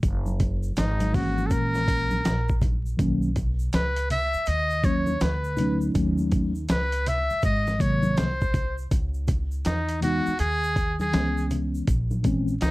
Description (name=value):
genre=hip hop, jazz-hop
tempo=81 BPM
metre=4/4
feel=swing 64% on 16ths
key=unclear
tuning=A4 = 439 Hz
part: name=upright bass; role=bass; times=0.0-12.7 s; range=F#1 to E2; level=-27 LUFS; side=equal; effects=none
part: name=dusty soul sampler-style drum kit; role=drums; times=0.0-12.7 s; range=hi-hat, kick drum, snare drum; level=-26 LUFS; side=equal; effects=overdrive
part: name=tube shaker and congas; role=percussion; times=0.0-12.7 s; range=none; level=-34 LUFS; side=equal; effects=none
part: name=trumpet with metal mute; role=melody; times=0.8-12.7 s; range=D#4 to E5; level=-27 LUFS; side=equal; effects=slapback echo
part: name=mellow tine electric piano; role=accompaniment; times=1.1-12.5 s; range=B#2 to D#4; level=-26 LUFS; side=left 1 dB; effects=medium stereo tremolo
room=light reverb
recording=dark, warm production, vinyl crackle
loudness=-22 LUFS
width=side -19 dB against mid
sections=0.0-12.7 A section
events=none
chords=0.0 F#7; 3.0 Bmaj7; 6.0 D#m7b5; 7.4 G#7; 8.9 C#m9; 11.9 A#m7b5